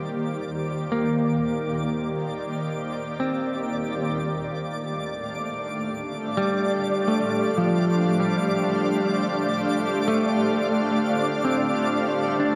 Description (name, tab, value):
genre	ambient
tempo	73 BPM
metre	4/4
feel	straight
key	unclear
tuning	A4 = 440 Hz
part	granular cloud pad	sustained chords	0.0-12.6 s	Eb3 to F5	-28 LUFS	equal	built-in reverb
part	twinkling granular texture	texture	0.0-12.6 s	D5 to D6	-33 LUFS	equal	built-in reverb
part	semi-hollow electric guitar	arpeggios	0.9-12.6 s	F3 to D4	-28 LUFS	equal	tape echo
room	wet cathedral reverb, RT60 5.7 s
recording	in a vast, echoing space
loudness	-25 LUFS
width	mono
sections	0.0-12.6 A section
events	fade-in on ambient pad 0.0-12.6; fade-in on synth texture 0.0-12.6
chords	0.0 Ebmaj7; 4.0 Fadd9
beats	| 0.76 1.58 2.40 3.22 | 4.04 4.87 5.69 6.51 | 7.33 8.15 8.98 9.80 | 10.62 11.44 12.26